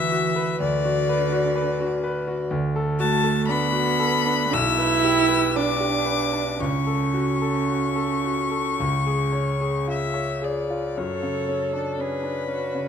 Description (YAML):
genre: classical, slow romantic movement for piano trio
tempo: 54-64 BPM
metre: 4/4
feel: rubato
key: F# minor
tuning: A4 = 440 Hz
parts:
  - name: rich violin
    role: melody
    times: 0.0-12.9 s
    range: A4 to E6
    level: -25 LUFS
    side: left 7 dB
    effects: none
  - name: warm cello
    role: second line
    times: 0.0-12.9 s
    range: D3 to A4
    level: -26 LUFS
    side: right 8 dB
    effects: none
  - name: bright concert grand piano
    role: accompaniment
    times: 0.0-12.9 s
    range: B1 to C#5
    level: -24 LUFS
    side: equal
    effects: none
room: moderate recital hall reverb, RT60 1.7 s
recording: close, detailed microphones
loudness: -21 LUFS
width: side -8 dB against mid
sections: 0.0-11.0 A section; 11.0-12.9 B section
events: none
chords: 0.0 Bm/D; 2.5 D6; 4.5 G/B; 6.6 F#m/C#; 8.8 C#; 11.0 F#m